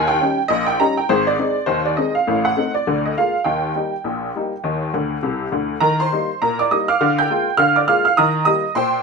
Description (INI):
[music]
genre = ragtime piano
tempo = 102 BPM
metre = 2/4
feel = swing 59% on 16ths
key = Eb major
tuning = A4 = 441 Hz
[part]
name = honky-tonk upright piano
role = solo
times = 0.0-9.0 s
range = Ab1 to G6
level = -16 LUFS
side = right 1 dB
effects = none
[sound]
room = moderate studio reverb, RT60 0.6 s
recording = minimal, uncompressed stereo recording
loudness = -16 LUFS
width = side -4 dB against mid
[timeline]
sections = 0.0-5.8 A section; 5.8-9.0 A section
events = honky-tonk piano fill 4.9-5.8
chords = 0.0 Eb7; 1.1 Ab; 2.3 Adim7; 2.9 Bb7/D; 3.5 Eb; 7.0 Bb7/D; 8.2 Eb